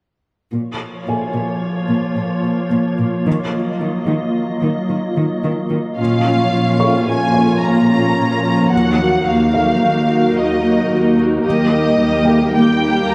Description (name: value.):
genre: cinematic.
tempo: 110 BPM.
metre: 5/4.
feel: straight.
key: Bb minor.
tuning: A4 = 440 Hz.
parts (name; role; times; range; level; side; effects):
glassy FM pad; sustained chords; 0.5-13.1 s; F3 to Eb5; -22 LUFS; equal; ensemble chorus, built-in reverb.
warm symphonic cello section; bass; 0.5-13.1 s; Eb2 to Eb3; -20 LUFS; equal; none.
felt-muted upright piano; texture; 1.1-13.1 s; Db5 to Db6; -27 LUFS; equal; digital delay.
rich symphonic violin section; melody; 6.0-13.1 s; Eb5 to Bb5; -23 LUFS; equal; none.
warm symphonic viola section; accompaniment; 6.0-13.1 s; Bb3 to G4; -22 LUFS; equal; none.
room: wet concert hall reverb, RT60 2.3 s.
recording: none.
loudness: -16 LUFS.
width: mono.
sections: 0.5-6.0 A section; 6.0-13.1 B section.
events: none.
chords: 0.5 Bbm; 3.3 Ebmadd9; 6.0 Bbm; 8.7 Ebmadd9; 11.4 Eb.